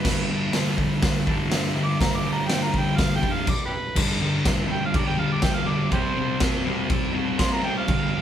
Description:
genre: garage rock duo or trio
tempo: 122 BPM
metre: 4/4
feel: straight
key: unclear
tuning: A4 = 439 Hz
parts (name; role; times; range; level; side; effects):
- overdriven harmonica; melody; 0.0-8.2 s; G4 to D6; -29 LUFS; right 2 dB; none
- fuzz guitar; riff; 0.0-8.2 s; G2 to C4; -24 LUFS; equal; distortion
- raw garage drum kit; drums; 0.0-8.0 s; crash cymbal, hi-hat, kick drum, snare drum; -24 LUFS; equal; none
room: light reverb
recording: band playing live in one room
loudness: -21 LUFS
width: side -10 dB against mid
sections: 0.0-4.0 A section; 4.0-8.2 B section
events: harmonica solo 0.0-4.0; stop 3.5-4.0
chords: 0.0 G5; 5.9 C5

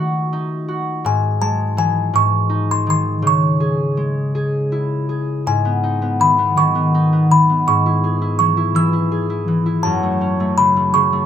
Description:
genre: children's music, lullaby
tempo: 55 BPM (dotted quarters)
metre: 6/8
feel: rubato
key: C# minor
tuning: A4 = 442 Hz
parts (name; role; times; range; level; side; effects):
- music box; melody; 0.0-11.3 s; G#5 to E6; -18 LUFS; equal; none
- concert harp; accompaniment; 0.0-11.3 s; F#2 to G#4; -17 LUFS; left 1 dB; none
room: moderate studio reverb, RT60 0.6 s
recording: none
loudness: -15 LUFS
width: side -9 dB against mid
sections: 0.0-5.5 A section; 5.5-11.3 B section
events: none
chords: 0.0 D#dim; 1.1 E/G#; 2.1 G#5; 3.2 C#m; 5.5 G#m; 9.8 F#m

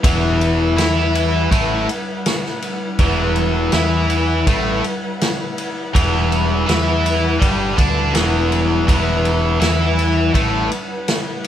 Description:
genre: psychedelic rock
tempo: 82 BPM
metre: 4/4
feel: straight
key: E minor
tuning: A4 = 436 Hz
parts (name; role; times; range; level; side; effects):
- muted chamber string section; sustained chords; 0.0-11.5 s; G3 to F#5; -25 LUFS; equal; none
- biting overdriven guitar; riff; 0.0-10.7 s; E2 to E4; -18 LUFS; left 1 dB; none
- growling picked electric bass; bass; 0.0-10.7 s; E1 to E2; -20 LUFS; right 1 dB; overdrive
- vintage drum kit; drums; 0.0-11.5 s; kick drum, ride cymbal, snare drum; -21 LUFS; equal; none
room: light reverb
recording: band playing live in one room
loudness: -15 LUFS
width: side -10 dB against mid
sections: 0.0-11.5 A section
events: none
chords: 0.0 Emadd9

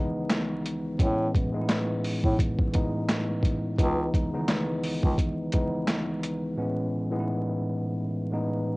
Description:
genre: hip hop, boom-bap hip-hop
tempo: 86 BPM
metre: 4/4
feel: swing 58% on 16ths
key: unclear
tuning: A4 = 441 Hz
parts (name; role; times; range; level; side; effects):
- tine electric piano; accompaniment; 0.0-8.8 s; C#2 to E4; -28 LUFS; equal; medium stereo tremolo, cassette tape, high-pass filter, low-pass filter
- boom bap sampler-style drum kit; drums; 0.3-6.4 s; handclaps, hi-hat, kick drum, snare drum; -26 LUFS; equal; overdrive, cassette tape
- warm bass clarinet; bass; 1.0-5.2 s; C#2 to A2; -26 LUFS; equal; none
room: light reverb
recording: home recording on cassette, vinyl crackle, nothing above 10.3 kHz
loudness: -25 LUFS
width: side -24 dB against mid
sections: 0.0-8.8 A section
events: drums muted 6.6-8.8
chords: 0.0 C#m7; 1.0 Amaj7; 3.8 C#m7; 6.6 Amaj7

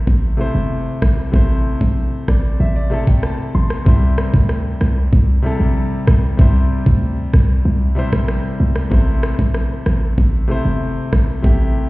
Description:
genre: dancehall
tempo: 95 BPM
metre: 4/4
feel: straight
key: A phrygian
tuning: A4 = 440 Hz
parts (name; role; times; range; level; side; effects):
- bright grand piano; accompaniment; 0.0-11.9 s; C3 to C6; -22 LUFS; left 2 dB; none
- short 808-style bass; bass; 0.0-11.9 s; G1 to D2; -16 LUFS; equal; none
- island pop drum kit; drums; 0.1-11.6 s; kick drum, rim click; -16 LUFS; equal; none
room: digital ambience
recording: heard muffled through a wall, stone room reverb, EQ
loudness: -14 LUFS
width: side -20 dB against mid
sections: 0.0-11.9 A section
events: grand piano fill 2.0-3.9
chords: 0.0 Am; 3.9 C; 8.9 Am

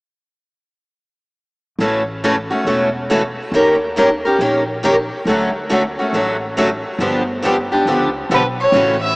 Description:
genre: acoustic string swing (jazz manouche)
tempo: 138 BPM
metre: 4/4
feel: swing 63% on 8ths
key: unclear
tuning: A4 = 440 Hz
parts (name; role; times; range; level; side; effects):
- picked steel-string acoustic guitar; accompaniment; 1.8-9.0 s; C#3 to A#4; -16 LUFS; equal; none
- picked steel-string acoustic guitar; accompaniment; 1.8-9.0 s; D3 to A#4; -20 LUFS; equal; none
- upright bass; bass; 1.8-9.2 s; E1 to D#2; -27 LUFS; equal; none
- warm violin; melody; 8.3-9.2 s; B4 to E5; -14 LUFS; equal; none
room: wet huge ambient reverb, RT60 9.1 s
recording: in a vast, echoing space, small speaker sound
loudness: -14 LUFS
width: side -31 dB against mid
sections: 1.8-8.7 A section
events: none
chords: 1.8 A6; 3.5 D#7; 5.3 Dmaj7; 7.0 G7

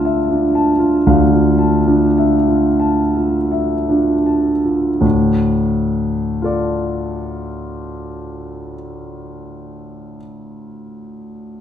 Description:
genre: classical, impressionist solo piano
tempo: 38-61 BPM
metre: 3/4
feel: rubato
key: D minor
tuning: A4 = 440 Hz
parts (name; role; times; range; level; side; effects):
- clear concert grand piano; solo; 0.0-11.6 s; D2 to A5; -15 LUFS; equal; none
room: wet recital hall reverb, RT60 1.6 s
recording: none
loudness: -13 LUFS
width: side -9 dB against mid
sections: 0.0-5.0 A section; 5.0-9.3 B section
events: slowing down 0.0-5.0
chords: 0.0 Dmadd9; 5.0 Dm

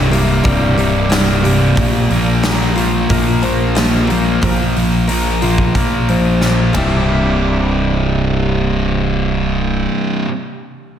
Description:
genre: quiet-loud alternative rock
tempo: 90 BPM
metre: 4/4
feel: straight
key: C mixolydian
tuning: A4 = 440 Hz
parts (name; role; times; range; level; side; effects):
- picked acoustic archtop guitar; arpeggios; 0.0-10.3 s; C2 to Bb4; -20 LUFS; left 3 dB; digital delay
- thick fuzz guitar; riff; 0.0-10.3 s; C2 to Bb3; -16 LUFS; right 1 dB; distortion, slapback echo
- fuzz fingered electric bass; bass; 0.0-9.9 s; C1 to Bb1; -18 LUFS; equal; overdrive
- big rock drum kit; drums; 0.1-6.9 s; hi-hat, kick drum, ride cymbal, snare drum; -20 LUFS; equal; none
room: wet concert hall reverb, RT60 1.9 s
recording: big arena sound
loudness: -12 LUFS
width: side -9 dB against mid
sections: 0.0-7.1 A section; 7.1-9.7 B section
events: drum fill 6.4-7.1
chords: 0.0 C7; 1.8 Bb5; 6.7 C7

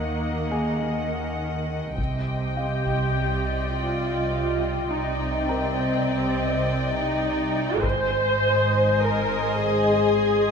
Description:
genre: cinematic, suspense film score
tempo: 102 BPM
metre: 5/4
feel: straight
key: unclear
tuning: A4 = 440 Hz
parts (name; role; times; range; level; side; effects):
- muted studio violin section; melody; 0.0-10.5 s; Gb5 to Ab5; -33 LUFS; left 3 dB; none
- muted studio violin section; second line; 0.0-10.5 s; C5 to Eb5; -29 LUFS; left 2 dB; none
- muted studio viola section; accompaniment; 0.0-10.5 s; Bb3 to C5; -25 LUFS; equal; none
- muted studio cello section; bass; 0.0-10.5 s; Ab2 to Eb3; -29 LUFS; right 2 dB; none
- muted studio double bass section; bass; 0.0-10.5 s; Ab1 to Eb2; -31 LUFS; right 3 dB; none
- felt-muted upright piano; texture; 0.0-7.9 s; Ab4 to Bb5; -38 LUFS; left 2 dB; none
- muted studio violin section; texture; 0.0-10.5 s; G5 to Gb6; -38 LUFS; left 4 dB; none
- solo taiko drums; drums; 2.0-3.1, 7.8-9.0 s; none; -31 LUFS; left 1 dB; none
room: moderate scoring stage reverb, RT60 1.6 s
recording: none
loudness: -21 LUFS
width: side -6 dB against mid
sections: 0.0-10.5 A section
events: none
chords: 0.0 Ebm; 2.0 Cmadd9; 7.8 Ab

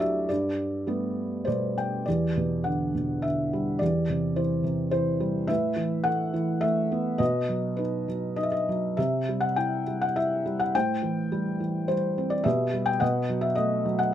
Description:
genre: classical, lyrical solo piano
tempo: 98-109 BPM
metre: 3/4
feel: rubato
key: E minor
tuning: A4 = 440 Hz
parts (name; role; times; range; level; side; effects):
- felt-muted upright piano; solo; 0.0-14.1 s; D2 to G5; -24 LUFS; equal; none
room: light reverb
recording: none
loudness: -24 LUFS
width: side -10 dB against mid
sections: 0.0-2.1 A section; 2.1-14.1 B section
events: felt piano fill 1.2-2.1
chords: 0.3 Gadd9; 2.1 Em7; 3.8 C/E; 5.5 Asus2; 7.2 B; 9.0 C; 10.7 Am7; 12.5 Em/B; 13.0 B7

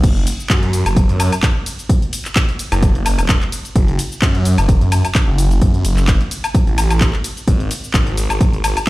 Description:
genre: bass house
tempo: 129 BPM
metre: 4/4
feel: swing 55% on 16ths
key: F# minor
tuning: A4 = 439 Hz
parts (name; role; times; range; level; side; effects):
- phased detuned saw bass; bass; 0.0-8.7 s; E1 to F#2; -16 LUFS; equal; phaser, overdrive, sidechain pumping
- electronic kick drum; drums; 0.0-8.9 s; none; -15 LUFS; equal; overdrive
- house drum kit; drums; 0.0-8.9 s; crash cymbal, handclaps, hi-hat, ride cymbal, shaker, woodblock; -21 LUFS; left 1 dB; none
room: digital ambience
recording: played on a big sound system in a bare room, large studio reverb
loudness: -13 LUFS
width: side -19 dB against mid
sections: 0.0-8.9 A section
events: none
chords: none

